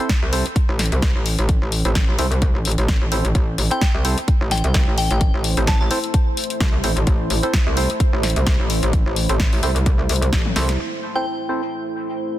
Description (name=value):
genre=bass house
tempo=129 BPM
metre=4/4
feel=swing 56% on 16ths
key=A minor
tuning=A4 = 440 Hz
part: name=percussive organ stab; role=stabs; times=0.0-11.6 s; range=C4 to C5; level=-27 LUFS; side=right 2 dB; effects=chorus, sidechain pumping, dub echo
part: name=electronic kick drum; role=drums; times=0.1-10.4 s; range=none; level=-18 LUFS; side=equal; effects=none
part: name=house drum kit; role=drums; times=0.1-10.8 s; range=hi-hat, snare drum, toms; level=-25 LUFS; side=left 2 dB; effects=none
part: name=metallic wobble bass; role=bass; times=0.2-10.8 s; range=A1 to C2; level=-20 LUFS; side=equal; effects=chorus, tube saturation, sidechain pumping
part: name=deep dark ambient pad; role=sustained chords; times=4.6-12.4 s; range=A3 to C5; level=-27 LUFS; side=right 1 dB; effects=chorus, built-in reverb, sidechain pumping
part: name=glassy synth bell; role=melody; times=3.7-5.9, 11.2-11.3 s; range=G5 to A5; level=-28 LUFS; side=left 1 dB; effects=chorus, tremolo, dub echo
room=little or no reverb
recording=dense, heavily limited modern master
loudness=-17 LUFS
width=side -14 dB against mid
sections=0.0-10.8 A section; 10.8-12.4 B section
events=drum fill 10.3-10.8; band accent 10.7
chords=0.0 Am